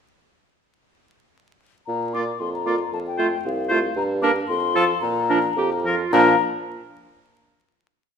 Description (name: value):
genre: quick classical-period movement for wind quintet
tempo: 107-116 BPM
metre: 2/4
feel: straight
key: Bb major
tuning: A4 = 440 Hz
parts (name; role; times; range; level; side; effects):
- mellow hollow silver concert flute; melody; 1.9-6.4 s; F5 to D6; -25 LUFS; left 11 dB; none
- warm bassoon; bass; 1.9-6.4 s; C2 to Bb2; -25 LUFS; right 2 dB; none
- clear oboe; second line; 2.1-6.4 s; A4 to D5; -26 LUFS; left 2 dB; none
- bright clarinet; accompaniment; 2.1-6.4 s; D4 to G4; -25 LUFS; right 6 dB; none
- clear French horn; accompaniment; 2.1-6.4 s; F3 to Bb3; -27 LUFS; equal; none
room: moderate recital hall reverb, RT60 1.4 s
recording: minimal, uncompressed stereo recording, vinyl crackle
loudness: -19 LUFS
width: side -6 dB against mid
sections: 1.9-6.1 A section; 6.1-7.2 final chord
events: slowing down 3.4-6.1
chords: 1.9 Bb; 2.9 F; 4.0 Gm; 4.5 F5; 5.0 Bb5; 6.1 Bb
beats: | 1.88 2.41 | 2.93 3.45 | 3.97 4.49 | 5.02 5.57 | 6.13